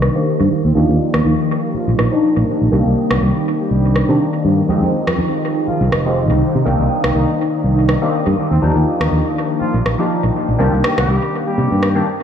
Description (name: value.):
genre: filtered disco house.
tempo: 122 BPM.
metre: 4/4.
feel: swing 55% on 16ths.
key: C minor.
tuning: A4 = 438 Hz.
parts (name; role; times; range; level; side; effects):
funky polysynth comp; accompaniment; 0.0-12.1 s; Eb3 to G4; -18 LUFS; equal; chorus, phaser, low-pass filter, dub echo.
phased string machine; sustained chords; 0.0-12.1 s; Eb3 to Eb6; -22 LUFS; left 1 dB; ensemble chorus, phaser, vintage 12-bit sampler grit, low-pass filter.
modern bright fingered electric bass; bass; 0.0-12.0 s; F1 to C3; -16 LUFS; equal; low-pass filter.
electronic rim click; drums; 0.0-11.9 s; none; -24 LUFS; equal; overdrive, low-pass filter on hats, low-pass filter on snare, low-pass filter on cymbals, dub echo.
brilliant horn section; melody; 0.7-12.1 s; C3 to G4; -27 LUFS; equal; vintage 12-bit sampler grit, low-pass filter, dub echo.
room: moderate echo chamber reverb, RT60 1.7 s.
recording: echo-heavy mix, studio reverb.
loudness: -13 LUFS.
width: side -8 dB against mid.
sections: 0.0-12.2 A section.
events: filter sweep on drum 0.0-12.2; filter sweep 0.0-12.2; stop 12.1.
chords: 0.0 Cm7; 0.5 Ebmaj7; 2.7 Cm7; 4.7 Fm7; 6.4 Cm7; 8.4 Ebmaj7; 10.6 Cm7.